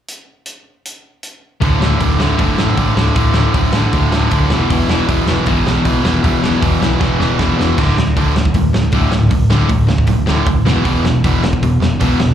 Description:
punk rock; 156 BPM; 4/4; straight; A4 = 440 Hz
loose indie drum kit; drums; 0.1-12.3 s; crash cymbal, hi-hat, kick drum, snare drum; -18 LUFS; equal
crunchy overdriven guitar; riff; 1.6-12.3 s; D2 to E3; -17 LUFS; left 8 dB; slapback echo
distorted electric guitar; riff; 1.6-12.3 s; D2 to E3; -18 LUFS; right 8 dB; overdrive, slapback echo
overdriven picked electric bass; bass; 1.6-12.3 s; D1 to E2; -17 LUFS; equal
little or no reverb; live gig heard through the venue's PA, club reverb; -12 LUFS; side -10 dB against mid
0.1-1.6 A section; 1.6-7.8 B section; 7.8-12.3 C section
drum fill 7.0-7.8
0.1 N.C.; 1.6 D5; 4.5 E5; 7.8 D5; 10.7 E5

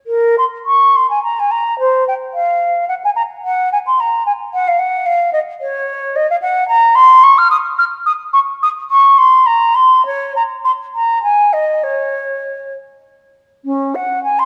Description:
classical, baroque-style fantasia for unaccompanied flute; 64-75 BPM (dotted quarters); 6/8; rubato; Bb minor, Db major from 6.7 s; A4 = 437 Hz
mellow concert flute; solo; 0.1-14.5 s; Db4 to F6; -14 LUFS; equal
moderate concert hall reverb, RT60 2.1 s; dark, warm production; -13 LUFS; mono
0.1-13.7 A section

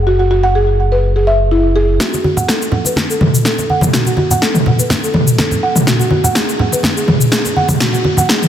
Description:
afro house; 124 BPM; 4/4; straight; F# minor; A4 = 441 Hz
smooth gliding synth bass; bass; 0.0-2.0 s; F#1; -14 LUFS; left 1 dB; sidechain pumping
buzzing marimba with soft mallets; arpeggios; 0.1-8.4 s; E4 to F#5; -16 LUFS; right 2 dB; sidechain pumping, low-pass filter, digital delay
deep house drum kit; drums; 2.0-8.5 s; shaker, snare drum, toms; -14 LUFS; left 1 dB; overdrive
electronic kick drum; drums; 2.0-8.4 s; -27 LUFS; equal
congas; percussion; 2.1-8.4 s; -18 LUFS; equal
moderate plate reverb, RT60 2.3 s; dense, heavily limited modern master; -11 LUFS; side -10 dB against mid
0.0-2.0 A section; 2.0-8.5 B section
build-up 2.0-8.5; drum fill 2.0-8.5; filter sweep on marimba 2.0-8.5
0.0 N.C.; 2.0 F#m; 5.9 F#sus2

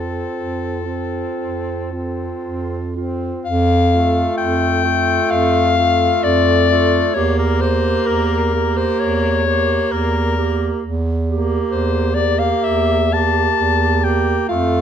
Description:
classical, lyrical piece for single-reed quartet; 65 BPM; 4/4; uneven beats, rubato; A4 = 440 Hz
mellow soprano saxophone; melody; 0.0-14.8 s; A4 to A5; -19 LUFS; left 7 dB
dark clarinet; second line; 0.0-14.8 s; F4 to G4; -23 LUFS; right 10 dB
mellow tenor saxophone; accompaniment; 0.0-14.8 s; A3 to C4; -24 LUFS; left 1 dB
dark bass clarinet; bass; 0.0-14.8 s; E2 to F2; -19 LUFS; right 2 dB
moderate recital hall reverb, RT60 1.5 s; -15 LUFS; side -8 dB against mid
0.0-3.5 A section; 3.5-14.8 B section
0.0 F; 7.2 Edim

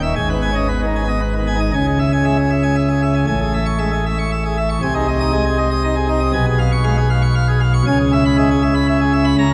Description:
classical, organ toccata; 118 BPM; 3/4; straight; C# minor; A4 = 442 Hz
pipe organ, plenum; solo; 0.0-9.5 s; D#1 to D#6; -17 LUFS; equal
wet church reverb, RT60 2.6 s; dark, warm production; -17 LUFS; mono
0.0-1.7 A section; 1.7-9.5 B section
0.2 G#m; 1.7 C#m; 3.3 Amaj7; 4.8 G#/B#; 6.3 C#7/B; 7.9 C#m7

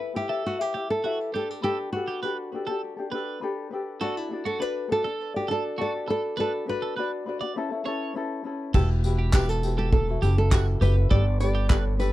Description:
acoustic pop; 101 BPM; 4/4; straight; A4 = 440 Hz
nylon-string guitar; melody; 0.0-12.1 s; E4 to D5; -29 LUFS; equal; tape echo
ukulele; accompaniment; 0.0-12.1 s; C#4 to E5; -31 LUFS; left 4 dB
twelve-string electric guitar; arpeggios; 0.3-11.8 s; F#4 to D5; -34 LUFS; right 6 dB; wide subtle chorus
upright bass; bass; 8.7-12.1 s; E1 to G1; -22 LUFS; equal
unplugged drum kit; drums; 8.7-12.1 s; crash cymbal, handclaps, kick drum, tambourine; -24 LUFS; equal
tambourine; percussion; 9.3-11.8 s; -44 LUFS; left 13 dB
little or no reverb; -24 LUFS; side -16 dB against mid
0.0-8.7 A section; 8.7-12.1 B section
0.0 Em; 1.3 Gadd9; 4.0 D; 7.6 Aadd9; 8.7 Emadd9; 11.1 Gadd9

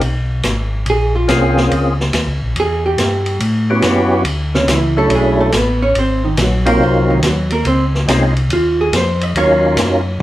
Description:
soul jazz organ trio; 141 BPM; 4/4; swing 67% on 8ths; Db major; A4 = 440 Hz
percussive tonewheel organ; melody; 0.0-10.0 s; F#3 to Ab4; -14 LUFS; equal; slow rotary speaker, overdrive, chorus vibrato
mellow tonewheel organ; bass; 0.0-10.2 s; Ab1 to A2; -17 LUFS; equal; slow rotary speaker
vintage drum kit; drums; 0.0-10.2 s; hi-hat, ride cymbal, snare drum, toms; -20 LUFS; left 1 dB
vintage hollow-body jazz guitar; accompaniment; 0.9-10.2 s; C#3 to Eb5; -16 LUFS; right 1 dB
wet studio reverb, RT60 0.5 s; heard from further back in the room; -12 LUFS; side -15 dB against mid
0.0-10.2 A section
hollow-body jazz guitar solo 0.0-10.2
0.0 Abm; 0.9 Bbm7; 2.6 Em; 3.4 A13; 4.3 Dmaj9; 6.0 Ab13; 7.7 Dbmaj9; 9.4 Ebm7

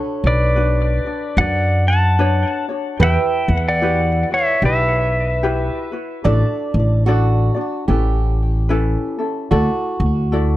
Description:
Hawaiian; 74 BPM; 4/4; swing 60% on 8ths; D major; A4 = 440 Hz
fingerpicked old ladder-braced acoustic guitar; second line; 0.0-10.6 s; F#4 to D5; -25 LUFS; right 5 dB; ping-pong delay
ukulele; accompaniment; 0.0-10.6 s; C#4 to D5; -24 LUFS; left 2 dB
upright bass; bass; 0.2-10.6 s; A1 to F#2; -17 LUFS; equal
pedal steel guitar; melody; 0.3-5.9 s; B4 to A5; -19 LUFS; equal; ping-pong delay
little or no reverb; dark, warm production; -15 LUFS; side -15 dB against mid
0.0-10.6 A section
0.0 Bmadd9; 3.0 Emadd9; 6.3 D/A; 7.9 Aadd9; 9.5 Dadd9

